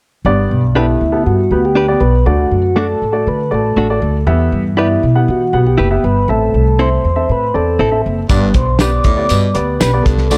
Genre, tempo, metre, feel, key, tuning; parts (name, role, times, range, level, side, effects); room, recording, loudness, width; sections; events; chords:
uptempo 1960s-style soul; 119 BPM; 4/4; straight; G major; A4 = 437 Hz
upright bass; bass; 0.2-10.4 s; F#1 to E3; -17 LUFS; equal
warm baby grand piano; accompaniment; 0.3-10.4 s; G2 to F#5; -21 LUFS; equal
tonewheel organ; melody; 0.8-10.4 s; E4 to D5; -19 LUFS; equal; slow rotary speaker, tape echo
direct-recorded clean electric guitar; stabs; 0.8-9.9 s; A3 to B4; -21 LUFS; equal
growling baritone saxophone; riff; 8.3-10.4 s; D2 to B2; -26 LUFS; equal
cloth-damped thuddy drum kit; drums; 8.3-10.4 s; hi-hat, kick drum, snare drum; -18 LUFS; equal
tambourine; percussion; 8.3-10.4 s; -30 LUFS; equal
light reverb, small room reverb; dark, warm production; -14 LUFS; mono
0.3-10.4 A section
0.3 G; 2.3 D; 4.3 Em; 6.3 Am; 8.3 G